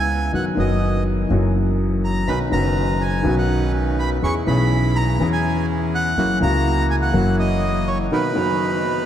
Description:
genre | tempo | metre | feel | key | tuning
tango | 124 BPM | 4/4 | rubato | B major | A4 = 438 Hz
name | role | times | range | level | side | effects
bandoneon | melody | 0.0-9.1 s | B4 to C#6 | -24 LUFS | right 2 dB | none
clear upright piano | accompaniment | 0.0-9.1 s | F#1 to G#4 | -21 LUFS | left 2 dB | none
upright bass | bass | 0.0-8.1 s | F#1 to E2 | -22 LUFS | right 1 dB | none
bandoneon | stabs | 2.3-9.1 s | A#3 to A#5 | -28 LUFS | right 4 dB | none
room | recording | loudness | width
wet cathedral reverb, RT60 5.1 s | in a vast, echoing space | -17 LUFS | side -10 dB against mid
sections
0.0-9.1 A section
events
none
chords
0.3 B/F#; 1.3 F#7; 2.3 Badd9; 4.2 E6; 6.2 F#7; 8.1 Bmaj7

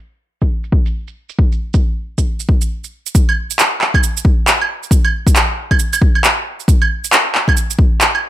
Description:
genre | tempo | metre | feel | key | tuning
future garage | 136 BPM | 4/4 | swing 61% on 16ths | none | none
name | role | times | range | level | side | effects
electronic kick drum | drums | 0.4-7.9 s | none | -13 LUFS | equal | overdrive, small room ambience
electronic shaker, claves and handclaps | drums | 0.4-8.2 s | none | -14 LUFS | right 1 dB | overdrive, small room ambience
room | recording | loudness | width
digital ambience | low-pass filter | -12 LUFS | side -13 dB against mid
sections
0.0-3.2 A section; 3.2-8.3 B section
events
filter sweep 0.0-3.2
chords
none

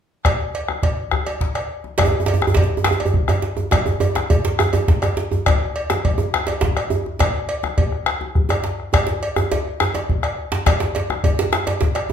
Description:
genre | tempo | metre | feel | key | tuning
west african traditional, West African drum ensemble | 138 BPM (dotted quarters) | 12/8 | straight | none | none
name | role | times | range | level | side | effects
bombo | percussion | 0.2-12.1 s | none | -21 LUFS | equal | none
cowbell | percussion | 0.3-12.1 s | none | -26 LUFS | equal | none
djembe | percussion | 0.3-12.1 s | none | -26 LUFS | left 4 dB | none
djembe | percussion | 2.0-12.1 s | none | -20 LUFS | right 3 dB | none
room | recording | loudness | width
wet large studio reverb, RT60 0.8 s | band playing live in one room | -17 LUFS | side -8 dB against mid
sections
0.3-2.0 A section; 2.0-12.1 B section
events
none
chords
none

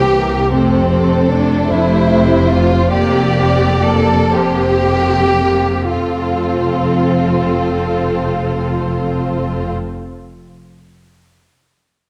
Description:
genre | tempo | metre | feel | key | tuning
classical, slow romantic movement for string orchestra | 35-54 BPM (dotted quarters) | 6/8 | rubato | F major | A4 = 440 Hz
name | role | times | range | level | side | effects
warm studio violin section | melody | 0.0-9.7 s | A4 to D5 | -25 LUFS | equal | none
rich studio violin section | second line | 0.0-9.7 s | C4 to A4 | -19 LUFS | equal | none
warm studio viola section | accompaniment | 0.0-9.7 s | C3 to A4 | -22 LUFS | equal | none
rich studio cello section | bass | 0.0-9.7 s | F2 to C3 | -22 LUFS | equal | none
warm studio double bass section | bass | 0.0-9.7 s | F1 to C2 | -22 LUFS | equal | none
room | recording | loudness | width
wet scoring stage reverb, RT60 1.7 s | dark, warm production | -15 LUFS | mono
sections
0.0-5.9 A section; 5.9-9.0 B section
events
slowing down 0.0-5.9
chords
0.0 C7; 0.5 F; 2.9 C5/F; 5.9 F

